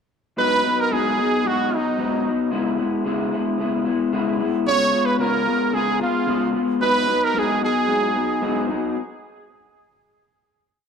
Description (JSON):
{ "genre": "indie pop", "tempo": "112 BPM", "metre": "4/4", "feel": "straight", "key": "G# minor", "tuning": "A4 = 440 Hz", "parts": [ { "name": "bright trumpet", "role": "melody", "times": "0.4-8.7 s", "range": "D#4 to C#5", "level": "-21 LUFS", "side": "right 3 dB", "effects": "analog chorus, tape echo" }, { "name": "electric guitar through a small old amp", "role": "accompaniment", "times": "0.4-9.0 s", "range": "G#2 to E#4", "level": "-21 LUFS", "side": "left 3 dB", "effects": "wide subtle chorus, vibrato effect" } ], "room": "moderate spring reverb, RT60 1.8 s, small room ambience", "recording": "dark, warm production", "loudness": "-18 LUFS", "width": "side -6 dB against mid", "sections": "0.4-9.0 A section", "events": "none", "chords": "0.4 G#m7; 2.5 C#m7; 4.7 C#7; 6.8 G#m7", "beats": "| 0.38 0.92 1.45 1.99 | 2.52 3.06 3.60 4.13 | 4.67 5.20 5.74 6.28 | 6.81 7.35 7.88 8.42" }